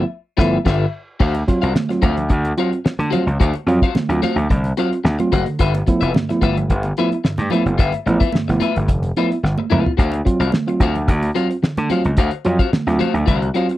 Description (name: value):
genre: funk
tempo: 109 BPM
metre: 4/4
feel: straight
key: unclear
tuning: A4 = 445 Hz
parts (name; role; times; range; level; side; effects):
- electric guitar at the edge of break-up; accompaniment; 0.0-13.8 s; F4 to F#5; -24 LUFS; left 9 dB; lush chorus
- tine electric piano; stabs; 0.0-13.8 s; G2 to E#4; -20 LUFS; right 2 dB; none
- gritty slap bass; bass; 0.0-13.5 s; F1 to D3; -19 LUFS; equal; overdrive
- cloth-damped thuddy drum kit; drums; 0.4-13.8 s; crash cymbal, hi-hat, kick drum, snare drum, toms; -17 LUFS; equal; none
- congas; percussion; 1.2-13.3 s; none; -26 LUFS; right 5 dB; none
room: little or no reverb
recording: dry, close 1970s-style studio recording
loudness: -16 LUFS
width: side -15 dB against mid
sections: 0.0-1.2 A section; 1.2-13.8 B section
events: band accent 0.0-1.2; drum fill 9.4-10.0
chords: 0.0 G13; 1.2 D7#9; 5.6 G13; 10.0 D7#9